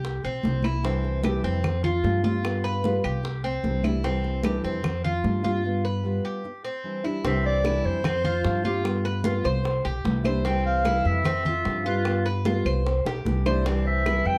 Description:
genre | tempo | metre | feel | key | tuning
latin, Cuban son and guajira | 150 BPM | 4/4 | straight | C major | A4 = 440 Hz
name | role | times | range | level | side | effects
Cuban tres | arpeggios | 0.0-14.4 s | C4 to C5 | -32 LUFS | equal | none
upright bass | bass | 0.0-14.4 s | B1 to G2 | -30 LUFS | equal | none
bongos | percussion | 0.0-14.3 s | none | -38 LUFS | equal | none
congas | percussion | 0.0-14.4 s | none | -32 LUFS | equal | none
claves | percussion | 0.6-5.0, 7.7-14.3 s | none | -43 LUFS | equal | none
nylon-string guitar | accompaniment | 0.8-14.4 s | C3 to F4 | -32 LUFS | equal | none
mellow clarinet | melody | 7.3-14.4 s | G4 to G5 | -29 LUFS | equal | slapback echo
room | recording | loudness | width
moderate studio reverb, RT60 0.5 s | dark, warm production | -25 LUFS | mono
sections
0.0-7.2 A section; 7.2-14.4 B section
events
break 5.6-7.2; drum fill 13.1-13.7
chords
0.0 Cadd9; 1.6 Fsus2; 2.4 G7; 3.2 Cadd9; 4.8 Fsus2; 5.6 G7; 6.4 Cadd9; 8.1 Fsus2; 8.9 G7; 9.7 Cadd9; 11.3 Fsus2; 12.1 G7; 12.9 Cadd9

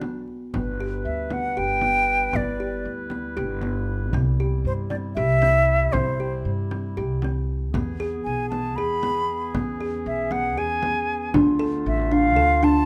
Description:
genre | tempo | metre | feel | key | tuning
contemporary instrumental, chamber music in an uneven meter | 233 BPM (eighths) | 7/8 | straight | unclear | A4 = 439 Hz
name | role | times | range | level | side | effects
concert flute | melody | 0.0-12.9 s | C5 to B5 | -25 LUFS | equal | none
mellow woodwind section | sustained chords | 0.0-12.9 s | C3 to B4 | -36 LUFS | equal | none
kalimba | arpeggios | 0.0-12.9 s | B3 to A4 | -29 LUFS | equal | none
upright bass | bass | 0.0-12.9 s | G1 to G2 | -29 LUFS | equal | none
frame drum | percussion | 0.0-12.9 s | none | -32 LUFS | equal | none
room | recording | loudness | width
light reverb | close, detailed microphones | -23 LUFS | mono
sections
0.5-12.9 A section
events
none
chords
0.0 Bm; 0.5 G; 4.1 C; 7.7 E; 11.3 Dm

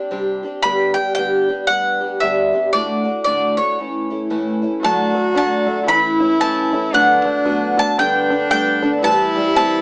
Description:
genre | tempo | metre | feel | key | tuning
acoustic folk duo or small band | 114 BPM | 4/4 | swing 61% on 8ths | D major | A4 = 436 Hz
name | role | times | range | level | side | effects
bowl-back mandolin | melody | 0.0-9.8 s | C#5 to B5 | -18 LUFS | equal | none
picked twelve-string acoustic guitar | accompaniment | 0.0-9.8 s | G2 to A4 | -19 LUFS | equal | none
clear cello | second line | 4.8-9.8 s | D4 to F#4 | -20 LUFS | equal | none
open-back banjo | arpeggios | 4.8-9.8 s | D3 to E4 | -23 LUFS | equal | none
room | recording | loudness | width
moderate studio ambience, RT60 0.5 s | small speaker sound | -14 LUFS | side -38 dB against mid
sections
0.0-4.8 A section; 4.8-9.8 B section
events
none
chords
0.0 Csus2; 0.6 G; 2.7 D/A; 3.8 A; 4.8 D; 5.9 A; 6.9 Bm7; 8.0 Gadd9; 9.0 Am7

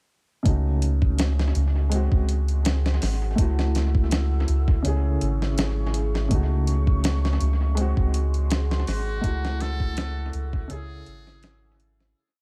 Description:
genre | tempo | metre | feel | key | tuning
trip hop | 82 BPM | 4/4 | swing 54% on 16ths | C# harmonic minor | A4 = 444 Hz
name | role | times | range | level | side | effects
dark upright piano | accompaniment | 0.4-12.2 s | C#3 to G#4 | -32 LUFS | equal | tremolo, tape echo
deep dark ambient pad | sustained chords | 1.1-12.1 s | F#4 to E6 | -40 LUFS | equal | chorus, built-in reverb, vintage 12-bit sampler grit
soft dub sub bass | bass | 0.5-12.1 s | G#1 to C#2 | -25 LUFS | equal | none
dusty soul sampler-style drum kit | drums | 0.5-12.2 s | hi-hat, kick drum, snare drum | -28 LUFS | equal | dub echo
trumpet with metal mute | melody | 8.9-11.8 s | F#4 to A4 | -40 LUFS | equal | dub echo
room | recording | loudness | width
digital ambience | echo-heavy mix | -23 LUFS | mono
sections
0.5-12.2 groove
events
fade-out 8.3-12.2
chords
0.5 D#m7b5/C#; 1.9 G#7/C#; 3.4 F#m7/C#; 4.8 C#m; 6.3 D#m7b5/C#; 7.8 G#7/C#; 9.2 F#m7/C#; 10.7 C#m

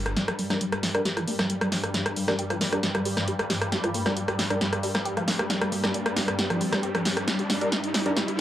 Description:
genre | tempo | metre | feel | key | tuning
driving peak-time techno | 135 BPM | 4/4 | straight | G minor | A4 = 440 Hz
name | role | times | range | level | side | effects
swarming drone | drone | 0.0-8.4 s | G2 to G3 | -32 LUFS | left 1 dB | built-in reverb, phaser
noise sweep and riser | sound effects | 0.0-8.4 s | none | -37 LUFS | equal | none
punchy analog drum machine | drums | 0.1-8.4 s | hi-hat, rim click, snare drum | -26 LUFS | equal | none
resonant blip pluck | riff | 0.2-8.3 s | F3 to G4 | -31 LUFS | equal | phaser, overdrive, wide subtle chorus, cassette tape, tape echo
supersaw stab | stabs | 0.5-8.1 s | G3 to Bb4 | -31 LUFS | equal | low-pass filter, analog delay
room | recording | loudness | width
digital ambience | dry, gritty hardware recording, transformer saturation, high-pass filter | -24 LUFS | side -12 dB against mid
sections
0.2-8.4 A section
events
noise sweep 0.0; build-up 0.2-8.4; drum fill 0.2-8.4; filter sweep on synth arpeggio sound 0.2-8.4; filter sweep on supersaw synth 0.2-8.4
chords
0.2 Gm

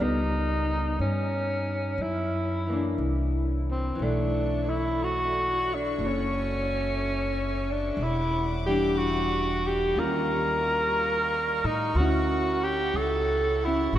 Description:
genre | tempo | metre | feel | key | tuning
jazz ballad | 60 BPM | 4/4 | swing 69% on 8ths | unclear | A4 = 439 Hz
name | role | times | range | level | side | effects
breathy tenor saxophone | melody | 0.0-14.0 s | C4 to Bb4 | -26 LUFS | equal | none
vintage hollow-body jazz guitar | accompaniment | 0.0-14.0 s | Eb3 to F4 | -32 LUFS | equal | none
upright bass | bass | 0.0-14.0 s | E1 to A2 | -30 LUFS | equal | none
warm studio string section | sustained chords | 4.0-14.0 s | G3 to D6 | -37 LUFS | left 1 dB | none
room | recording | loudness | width
wet cathedral reverb, RT60 5.9 s | in a vast, echoing space | -24 LUFS | side -12 dB against mid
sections
0.0-14.0 A section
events
none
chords
0.0 Ebaug7/Db; 2.0 F#aug7; 4.0 B9sus4; 8.0 Em9; 10.0 Eb9; 11.9 Dmaj9

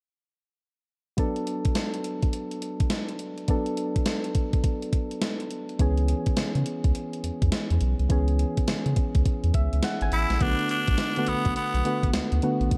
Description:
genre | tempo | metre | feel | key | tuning
R&B, new jack swing | 104 BPM | 4/4 | swing 64% on 16ths | B dorian | A4 = 441 Hz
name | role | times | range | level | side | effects
soft electric-piano-like synth keys | accompaniment | 1.2-12.8 s | D3 to B5 | -32 LUFS | equal | chorus
gated 80s digital drum machine | drums | 1.2-12.8 s | hi-hat, kick drum, snare drum | -29 LUFS | equal | gated reverb, gated reverb snare
round analog bass | bass | 5.8-12.8 s | G#1 to C#3 | -27 LUFS | equal | none
growling tenor saxophone | melody | 10.1-12.1 s | B3 to E4 | -30 LUFS | equal | none
room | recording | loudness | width
light reverb | dark, warm production | -26 LUFS | mono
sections
1.2-10.4 A section; 10.4-12.8 B section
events
synth keys fill 9.3-10.4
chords
1.2 Bm7; 5.8 C#m7; 10.4 Bm7

